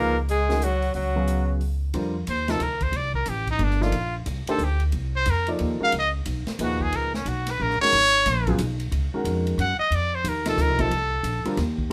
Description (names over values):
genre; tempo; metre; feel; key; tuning
modal jazz; 181 BPM; 3/4; swing 64% on 8ths; unclear; A4 = 439 Hz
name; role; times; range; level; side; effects
bright trumpet; melody; 0.0-11.6 s; Db4 to Gb5; -26 LUFS; equal; none
growling alto saxophone; second line; 0.0-1.6 s; Gb3 to Bb3; -30 LUFS; equal; none
warm upright piano; accompaniment; 0.0-11.9 s; Bb2 to F5; -30 LUFS; equal; none
upright bass; bass; 0.0-11.9 s; G1 to Gb2; -28 LUFS; equal; none
swinging big-band drum kit; drums; 0.3-11.8 s; hi-hat, kick drum, ride cymbal, snare drum; -37 LUFS; equal; none
room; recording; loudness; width
moderate studio reverb, RT60 0.6 s; none; -24 LUFS; mono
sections
0.0-1.9 A section; 1.9-11.9 B section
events
trumpet solo 1.9-11.9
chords
0.0 Db9sus4; 1.9 F9sus4; 5.9 Db9sus4; 9.9 F7sus4